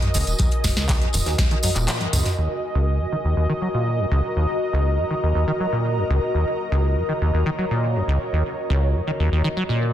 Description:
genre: acid house.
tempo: 121 BPM.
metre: 4/4.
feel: straight.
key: Eb minor.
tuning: A4 = 441 Hz.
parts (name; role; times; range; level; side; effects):
warm analog pad; sustained chords; 0.0-9.9 s; Eb5; -30 LUFS; right 2 dB; chorus, tremolo, sidechain pumping.
acid bass, saw; riff; 0.0-9.9 s; Db2 to Gb3; -22 LUFS; equal; analog chorus, sidechain pumping, tape echo.
booming analog drum machine; drums; 0.0-2.4 s; handclaps, hi-hat, snare drum, toms; -25 LUFS; equal; low-pass filter on hats, low-pass filter on snare, low-pass filter on toms.
ethereal airy pad; texture; 0.0-9.9 s; Gb4 to Bb5; -27 LUFS; left 1 dB; ensemble chorus, built-in reverb, tremolo, sidechain pumping.
saturated sub bass; bass; 0.1-1.9 s; Eb1 to Db2; -25 LUFS; equal; sidechain pumping.
tambourine; percussion; 0.1-2.4 s; none; -31 LUFS; right 3 dB; none.
electronic kick drum; drums; 0.4-1.5 s; none; -22 LUFS; equal; none.
gated 80s drum kit; drums; 0.4-2.4 s; hi-hat, snare drum, tambourine; -33 LUFS; equal; high-pass filter on hats, high-pass filter on snare, high-pass filter on perc, high-pass filter on room.
room: light reverb, small room ambience.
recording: dense, heavily limited modern master.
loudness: -19 LUFS.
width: side -11 dB against mid.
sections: 0.0-2.4 A section; 2.4-9.9 B section.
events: drum fill 1.9-2.4; band accent 1.9.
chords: 0.0 Ebm.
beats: | 0.39 0.89 1.39 1.88 | 2.38 2.87 3.37 3.87 | 4.36 4.86 5.35 5.85 | 6.34 6.84 7.34 7.83 | 8.33 8.82 9.32 9.81.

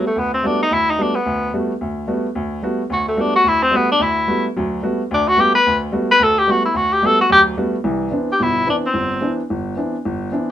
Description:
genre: jazz.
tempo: 218 BPM.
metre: 4/4.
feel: swing 61% on 8ths.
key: G major.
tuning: A4 = 440 Hz.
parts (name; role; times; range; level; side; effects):
warm tenor saxophone; melody; 0.0-9.4 s; A3 to B4; -14 LUFS; left 1 dB; none.
warm baby grand piano; accompaniment; 0.0-10.5 s; G1 to F#4; -20 LUFS; right 1 dB; none.
room: moderate studio ambience, RT60 0.5 s.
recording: minimal, uncompressed stereo recording.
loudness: -15 LUFS.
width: side -11 dB against mid.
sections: 0.0-7.8 A section; 7.8-10.5 B section.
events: tenor saxophone solo 0.0-7.8.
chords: 0.0 Gmaj9; 7.8 Cmaj9.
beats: | 0.15 0.43 0.70 0.98 | 1.25 1.53 1.80 2.08 | 2.35 2.63 2.90 3.17 | 3.45 3.72 4.00 4.27 | 4.55 4.82 5.10 5.37 | 5.65 5.92 6.19 6.47 | 6.74 7.02 7.29 7.57 | 7.84 8.12 8.39 8.67 | 8.94 9.22 9.49 9.77 | 10.04 10.32.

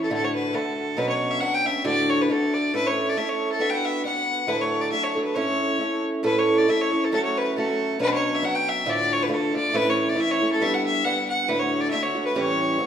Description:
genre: celtic folk, Celtic polka.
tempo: 137 BPM.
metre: 2/4.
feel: swing 54% on 8ths.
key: A mixolydian.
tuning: A4 = 440 Hz.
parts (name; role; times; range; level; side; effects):
clear fiddle; melody; 0.0-12.9 s; A4 to G5; -24 LUFS; left 1 dB; none.
picked old ladder-braced acoustic guitar; accompaniment; 0.0-12.9 s; D2 to B4; -24 LUFS; right 1 dB; none.
room: wet recital hall reverb, RT60 1.7 s.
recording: minimal, uncompressed stereo recording.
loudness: -21 LUFS.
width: side -8 dB against mid.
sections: 0.0-6.2 A section; 6.2-12.9 A section.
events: none.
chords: 0.1 D/A; 1.0 Bmadd9; 1.9 D; 2.7 A; 3.6 Bm; 4.5 D; 5.4 A; 7.1 F#m; 8.0 Bmadd9; 8.9 Dm; 9.7 A; 10.6 G; 11.5 D; 12.3 A7.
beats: | 0.10 0.54 | 0.98 1.42 | 1.86 2.30 | 2.74 3.18 | 3.62 4.05 | 4.49 4.93 | 5.37 5.81 | 6.24 6.68 | 7.12 7.55 | 7.99 8.43 | 8.86 9.30 | 9.74 10.17 | 10.61 11.04 | 11.48 11.91 | 12.35 12.78.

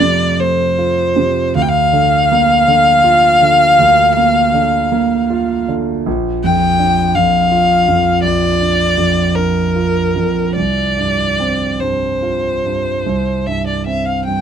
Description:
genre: classical, romantic duo for violin and grand piano.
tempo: 47-56 BPM (dotted quarters).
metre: 12/8.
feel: rubato.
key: unclear.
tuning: A4 = 442 Hz.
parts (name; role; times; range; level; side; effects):
rich violin; melody; 0.0-14.4 s; Bb4 to G5; -13 LUFS; left 2 dB; none.
warm concert grand piano; accompaniment; 0.0-14.4 s; Bb1 to F4; -16 LUFS; right 3 dB; none.
room: light reverb.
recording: dark, warm production.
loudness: -11 LUFS.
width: side -8 dB against mid.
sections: 0.0-14.4 A section.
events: none.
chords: 0.0 F; 1.5 Bb/D; 6.1 Bb; 10.6 Csus4; 13.1 C.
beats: 0.39 | 1.55 2.67 3.79 4.92 | 6.06 7.14 8.23 9.36 | 10.56 11.81 13.06 14.26.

